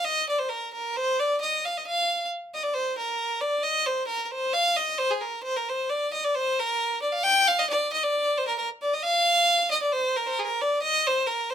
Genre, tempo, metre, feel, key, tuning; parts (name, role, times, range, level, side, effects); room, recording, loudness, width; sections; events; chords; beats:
celtic folk; 134 BPM; 2/4; swing 53% on 8ths; A4 = 440 Hz
clear fiddle; solo; 0.0-11.5 s; Ab4 to G5; -23 LUFS; equal
moderate small room reverb, RT60 0.5 s; minimal, uncompressed stereo recording; -23 LUFS; side -9 dB against mid
0.0-2.7 A section; 2.7-9.9 B section; 9.9-11.5 B section
| 0.04 0.49 | 0.94 1.39 | 1.84 2.29 | 2.74 3.18 | 3.63 4.08 | 4.53 4.98 | 5.43 5.87 | 6.32 6.77 | 7.22 7.67 | 8.12 8.56 | 9.01 9.46 | 9.91 10.36 | 10.81 11.25